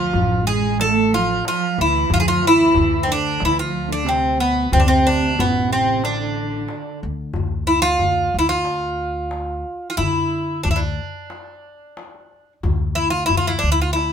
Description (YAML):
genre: Turkish makam ensemble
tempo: 91 BPM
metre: 4/4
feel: straight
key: D makam nikriz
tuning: A4 = 441 Hz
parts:
  - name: Greek bouzouki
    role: melody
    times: 0.0-14.1 s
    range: B3 to A4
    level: -19 LUFS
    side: equal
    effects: none
  - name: warm studio cello section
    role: second line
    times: 0.0-7.0 s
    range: B2 to A3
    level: -23 LUFS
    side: right 4 dB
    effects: none
  - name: upright bass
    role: bass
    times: 0.0-14.1 s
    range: A1 to D3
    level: -24 LUFS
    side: equal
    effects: none
  - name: darbuka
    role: percussion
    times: 0.1-14.1 s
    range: none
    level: -26 LUFS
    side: left 4 dB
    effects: none
room: moderate small room reverb, RT60 0.5 s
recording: minimal, uncompressed stereo recording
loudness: -17 LUFS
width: side -8 dB against mid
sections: 0.0-7.4 A section; 7.4-14.1 B section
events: none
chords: none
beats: 0.13 0.79 1.45 | 2.10 2.76 3.42 4.07 | 4.73 5.39 6.04 6.70 | 7.36 8.02 8.68 9.33 | 9.99 10.65 11.31 11.97 | 12.63 13.29 13.95